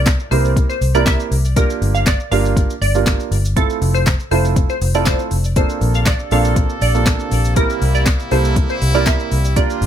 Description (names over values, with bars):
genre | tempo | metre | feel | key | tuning
dance-pop | 120 BPM | 4/4 | straight | unclear | A4 = 439 Hz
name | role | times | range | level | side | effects
glassy wavetable pluck | melody | 0.0-9.8 s | A4 to F5 | -23 LUFS | equal | chorus, plate reverb, ping-pong delay
dark grand piano | accompaniment | 0.0-9.9 s | A3 to Bb4 | -21 LUFS | right 8 dB | sidechain pumping
vintage muted fingered electric bass | bass | 0.0-9.9 s | F1 to C2 | -17 LUFS | left 1 dB | sidechain pumping
downlifter | sound effects | 0.0-1.6 s | none | barely audible | none | none
smooth R&B drum kit | drums | 0.1-9.9 s | handclaps, hi-hat, kick drum, shaker, snare drum | -18 LUFS | left 1 dB | none
bright brass ensemble | sustained chords | 5.6-9.9 s | C3 to A4 | -25 LUFS | equal | sidechain pumping
room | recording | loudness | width
light reverb | none | -14 LUFS | side -10 dB against mid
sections
0.0-9.9 A section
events
none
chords
0.0 C7; 1.6 Gm7; 3.6 Fmaj7; 5.6 Bbmaj9; 7.6 C7